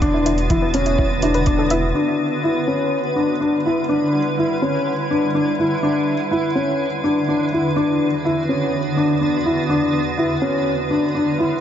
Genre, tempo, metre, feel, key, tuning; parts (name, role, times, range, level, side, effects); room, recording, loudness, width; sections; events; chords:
piano and strings electronica; 124 BPM; 4/4; straight; E dorian; A4 = 441 Hz
granular cloud pad; sustained chords; 0.0-11.6 s; E2 to B4; -22 LUFS; right 2 dB; built-in reverb
dark concert grand piano; riff; 0.0-11.5 s; C#4 to E4; -19 LUFS; left 1 dB; tape echo
warm sub bass; bass; 0.0-1.9 s; E1; -23 LUFS; right 1 dB; sidechain pumping
electronic hi-hat; drums; 0.0-1.8 s; -31 LUFS; right 1 dB
electronic kick drum; drums; 0.0-1.6 s; -20 LUFS; right 1 dB
soft round pluck; arpeggios; 0.1-1.8 s; E3 to E5; -28 LUFS; equal; chorus, cassette tape, sidechain pumping, tape echo
moderate huge ambient reverb, RT60 8.2 s; nothing above 7.7 kHz; -17 LUFS; side -9 dB against mid
0.0-2.0 A section; 2.0-11.6 B section
0.0 Bm/E; 2.0 Em7; 5.8 Bm/E; 9.7 Em7